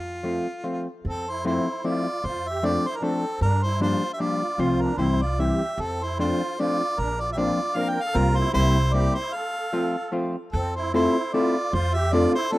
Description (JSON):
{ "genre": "musette waltz", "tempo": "152 BPM", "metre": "3/4", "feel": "swing 55% on 8ths", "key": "F major", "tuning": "A4 = 440 Hz", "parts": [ { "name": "mellow harmonica", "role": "melody", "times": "0.0-12.6 s", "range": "F4 to G5", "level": "-27 LUFS", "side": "equal", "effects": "none" }, { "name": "upright bass", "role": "bass", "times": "0.0-12.2 s", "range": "Bb1 to G2", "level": "-25 LUFS", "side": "equal", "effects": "none" }, { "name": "hollow-body jazz guitar", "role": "accompaniment", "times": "0.2-12.6 s", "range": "E3 to A4", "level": "-24 LUFS", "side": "left 1 dB", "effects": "none" }, { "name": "musette accordion", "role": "second line", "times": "1.1-12.6 s", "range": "C4 to Bb4", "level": "-33 LUFS", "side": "right 5 dB", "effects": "none" } ], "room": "little or no reverb", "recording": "rough home demo mix", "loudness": "-22 LUFS", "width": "side -18 dB against mid", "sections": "0.0-1.0 A section; 1.0-10.5 B section; 10.5-12.6 B section", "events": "break 9.3-10.5", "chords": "0.0 F; 1.0 Fmaj7; 2.2 Dm7/F; 3.4 Gm7; 4.6 F/C; 5.0 C; 5.8 F6; 7.0 Bbadd9; 8.2 C7sus4; 8.6 C7; 9.3 F; 10.5 Fmaj7; 11.7 Dm7/F" }